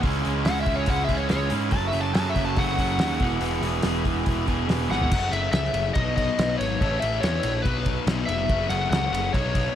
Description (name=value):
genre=classic rock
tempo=142 BPM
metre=4/4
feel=straight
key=F# dorian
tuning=A4 = 439 Hz
part: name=cranked stack guitar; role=riff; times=0.0-9.8 s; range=E2 to A4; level=-29 LUFS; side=left 14 dB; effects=overdrive
part: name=crunchy overdriven guitar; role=riff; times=0.0-5.1 s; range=E2 to C#4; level=-28 LUFS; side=right 14 dB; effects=none
part: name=fuzz picked electric bass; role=bass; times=0.0-9.7 s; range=E1 to G#2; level=-28 LUFS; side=equal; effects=overdrive
part: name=cloth-damped thuddy drum kit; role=drums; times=0.0-9.6 s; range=crash cymbal, hi-hat, kick drum, ride cymbal, snare drum, toms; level=-27 LUFS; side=equal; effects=none
part: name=overdriven slide guitar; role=melody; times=0.5-9.8 s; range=B4 to A5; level=-28 LUFS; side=left 1 dB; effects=tape echo
room=small room ambience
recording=none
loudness=-21 LUFS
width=side -10 dB against mid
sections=0.0-5.1 A section; 5.1-9.8 B section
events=electric slide guitar solo 0.0-5.1; drum fill 4.9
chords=0.0 C#m; 1.7 F#m; 3.2 E; 5.1 F#m; 6.0 B; 6.8 A; 7.6 B; 8.5 F#m